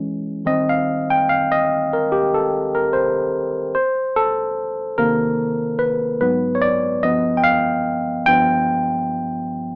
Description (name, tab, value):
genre	R&B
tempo	73 BPM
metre	4/4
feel	swing 54% on 16ths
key	unclear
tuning	A4 = 441 Hz
part	barky tine electric piano	solo	0.0-9.8 s	G2 to G5	-16 LUFS	equal	none
room	wet studio reverb, RT60 0.6 s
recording	rough home demo mix, small speaker sound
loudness	-16 LUFS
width	side -26 dB against mid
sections	0.0-3.7 A section; 3.7-9.8 B section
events	tine electric piano solo 0.0-3.7, 3.7-9.8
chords	0.5 Eb6; 3.7 Cm7; 6.2 Abm7; 7.0 G7